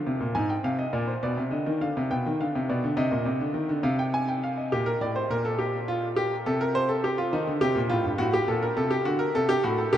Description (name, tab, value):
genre	classical, baroque-style two-part invention for grand piano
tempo	69 BPM (dotted quarters)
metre	12/8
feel	straight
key	unclear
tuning	A4 = 442 Hz
part	clear grand piano	solo	0.0-10.0 s	G2 to Ab5	-24 LUFS	equal	none
room	wet huge ambient reverb, RT60 9.1 s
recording	in a vast, echoing space, nothing above 11.0 kHz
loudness	-24 LUFS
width	side -11 dB against mid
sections	0.0-10.0 A section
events	none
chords	0.0 Dm7b5; 1.2 G7/B (rootless); 3.0 Cm; 4.7 Gm; 6.5 Am7b5/C; 8.2 D7/A (rootless)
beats	0.35 | 1.23 2.10 2.98 3.85 | 4.72 5.59 6.46 7.32 | 8.19 9.06 9.93